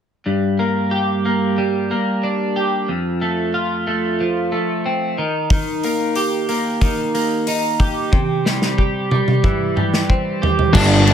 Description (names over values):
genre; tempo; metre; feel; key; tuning
quiet-loud alternative rock; 92 BPM; 4/4; straight; G minor; A4 = 440 Hz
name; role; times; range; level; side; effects
twelve-string electric guitar; arpeggios; 0.3-10.7 s; F2 to G4; -18 LUFS; right 1 dB; wide subtle chorus, plate reverb
loose indie drum kit; drums; 5.5-11.1 s; crash cymbal, hi-hat, kick drum, ride cymbal, snare drum, toms; -19 LUFS; equal; none
octave-fuzz lead guitar; melody; 10.7-11.1 s; D4 to D5; -17 LUFS; left 1 dB; distortion, plate reverb
overdriven semi-hollow guitar; riff; 10.7-11.1 s; G2 to D4; -19 LUFS; right 10 dB; none
thick fuzz guitar; riff; 10.7-11.1 s; G2 to D4; -18 LUFS; left 9 dB; distortion
fuzz picked electric bass; bass; 10.7-11.1 s; G1; -13 LUFS; equal; overdrive
room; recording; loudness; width
light reverb; none; -16 LUFS; side -8 dB against mid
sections
0.3-10.7 A section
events
drum fill 8.1-10.7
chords
0.3 Gm; 2.9 F; 5.2 Eb; 8.1 C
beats
| 0.26 0.92 1.57 2.23 | 2.88 3.54 4.20 4.85 | 5.51 6.16 6.82 7.47 | 8.13 8.78 9.44 10.09 | 10.75